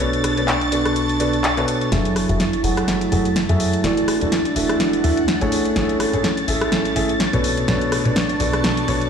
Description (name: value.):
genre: piano house.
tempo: 125 BPM.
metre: 4/4.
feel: swing 56% on 16ths.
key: F# minor.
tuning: A4 = 440 Hz.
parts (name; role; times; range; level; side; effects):
string machine, violins; sustained chords; 0.0-9.1 s; A6; -28 LUFS; equal; ensemble chorus.
bright grand piano; riff; 0.0-9.1 s; B2 to F#5; -21 LUFS; equal; low-pass filter, tape echo.
plucky analog bass; bass; 0.0-9.1 s; E1 to F#2; -25 LUFS; left 1 dB; none.
house drum kit; drums; 0.0-9.1 s; handclaps, hi-hat, rim click, snare drum; -23 LUFS; left 1 dB; none.
airy breathy pad; texture; 0.0-9.1 s; A3 to C#6; -24 LUFS; right 2 dB; chorus.
room: moderate plate reverb, RT60 1.4 s.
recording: played on a big sound system in a bare room, large studio reverb.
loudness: -17 LUFS.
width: side -7 dB against mid.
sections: 0.0-1.9 A section; 1.9-9.1 B section.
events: build-up 1.9-9.1; drum fill 1.9-9.1; filter sweep on grand piano 1.9-9.1.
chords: 0.0 Bm9; 1.9 F#m9; 3.8 E9sus4; 5.5 Amaj7; 7.4 Bm9.